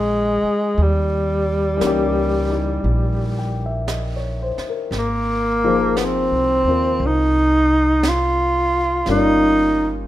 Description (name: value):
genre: jazz ballad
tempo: 58 BPM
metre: 4/4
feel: swing 68% on 8ths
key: unclear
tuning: A4 = 440 Hz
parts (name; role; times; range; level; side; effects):
- breathy tenor saxophone; melody; 0.0-9.9 s; G3 to F4; -18 LUFS; equal; none
- warm grand piano; accompaniment; 0.0-10.1 s; Fb3 to G5; -24 LUFS; left 5 dB; none
- upright bass; bass; 0.0-10.1 s; G1 to Eb2; -22 LUFS; equal; none
- jazz brush drum kit; drums; 0.8-10.1 s; brushed snare drum, hi-hat, snare drum; -32 LUFS; right 4 dB; none
room: moderate large studio reverb, RT60 1.2 s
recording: minimal, uncompressed stereo recording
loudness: -16 LUFS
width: side -14 dB against mid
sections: 0.0-10.1 A section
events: none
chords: 0.0 Eb69; 0.8 Eb7b9; 4.9 Ab69; 9.1 Gm7b5